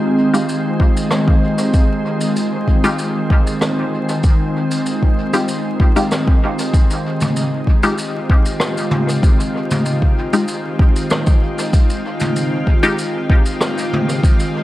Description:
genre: ambient dub.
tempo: 96 BPM.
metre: 4/4.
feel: straight.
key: F minor.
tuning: A4 = 440 Hz.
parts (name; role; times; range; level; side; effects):
soft additive organ-like pad; sustained chords; 0.0-14.6 s; Eb3 to G4; -19 LUFS; equal; ensemble chorus, built-in reverb.
filtered dub chord stab; stabs; 0.3-13.0 s; Ab3 to G4; -21 LUFS; left 1 dB; phaser, dub echo.
jazz brush drum kit; drums; 0.3-14.5 s; rim click, shaker, toms; -23 LUFS; equal; dub echo.
electronic kick drum; drums; 0.8-14.4 s; none; -13 LUFS; equal; none.
room: light reverb, small room ambience.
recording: vinyl crackle.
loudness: -14 LUFS.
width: side -16 dB against mid.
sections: 0.0-6.7 A section; 6.7-14.6 B section.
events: filter sweep on synth stab 0.0-6.7.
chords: 0.0 Fm9.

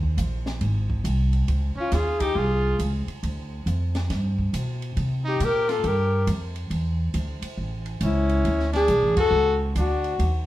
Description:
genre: jazz, small-group swing and bop.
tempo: 138 BPM.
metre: 4/4.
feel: swing 65% on 8ths.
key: unclear.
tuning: A4 = 439 Hz.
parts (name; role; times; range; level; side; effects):
upright bass; bass; 0.0-10.5 s; F#1 to C3; -24 LUFS; equal; none.
compact cocktail drum kit; drums; 0.0-10.3 s; hi-hat, kick drum, ride cymbal, snare drum; -34 LUFS; right 1 dB; none.
mellow alto saxophone; melody; 1.8-10.5 s; E4 to Bb4; -23 LUFS; left 2 dB; none.
brilliant trumpet; second line; 1.8-10.2 s; C#4 to G4; -30 LUFS; right 2 dB; none.
room: wet studio reverb, RT60 0.8 s.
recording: heard from further back in the room.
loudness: -22 LUFS.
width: side -15 dB against mid.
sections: 0.0-10.5 A section.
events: band accent 9.1.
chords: 0.0 Eb5; 0.6 Ab; 1.5 Dbmaj9; 3.2 Dm; 4.1 G; 5.0 C5; 6.7 Dsus2; 7.6 A; 8.4 Dmaj7.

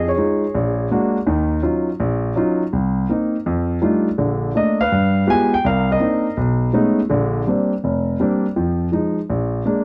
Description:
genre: solo jazz.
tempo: 165 BPM.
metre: 4/4.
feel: swing 66% on 8ths.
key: unclear.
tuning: A4 = 436 Hz.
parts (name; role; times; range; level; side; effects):
warm grand piano; solo; 0.0-9.8 s; F1 to Ab5; -19 LUFS; equal; none.
room: light reverb.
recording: dark, warm production.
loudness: -19 LUFS.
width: mono.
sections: 0.0-9.8 A section.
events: none.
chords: 0.0 Dbadd9/F; 0.6 Bb7alt; 1.3 Ebm9; 2.7 Cm7; 3.5 F13; 4.2 Bbmaj7; 4.9 G7b9; 5.6 Cm9; 6.4 B13; 7.1 Bb69; 8.6 Fm7; 9.3 Bb7.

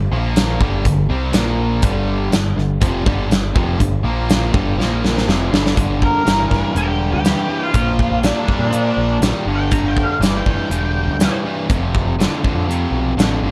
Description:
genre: classic rock.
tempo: 122 BPM.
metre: 4/4.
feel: straight.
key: unclear.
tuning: A4 = 437 Hz.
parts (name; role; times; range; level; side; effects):
cranked stack guitar; riff; 0.0-13.5 s; F2 to C4; -26 LUFS; equal; overdrive.
distorted electric guitar; riff; 0.0-13.5 s; F2 to C4; -26 LUFS; equal; overdrive.
growling picked electric bass; bass; 0.0-13.5 s; E1 to Bb2; -23 LUFS; equal; overdrive.
gated 80s drum kit; drums; 0.4-13.3 s; hi-hat, kick drum, snare drum; -20 LUFS; equal; none.
octave-fuzz lead guitar; melody; 6.0-11.3 s; D4 to Bb5; -24 LUFS; equal; wah, distortion.
room: light reverb, small room ambience.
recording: none.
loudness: -17 LUFS.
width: mono.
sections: 0.0-5.8 A section; 5.8-13.5 B section.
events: drum fill 4.8-5.8; lead electric guitar solo 5.8-13.5.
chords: 0.1 Bb5; 0.6 G5; 1.3 Bb5; 1.8 G5; 4.0 Bb5; 4.5 G5; 4.8 Bb5; 5.3 G5; 7.7 Bb; 9.5 G5; 11.7 F.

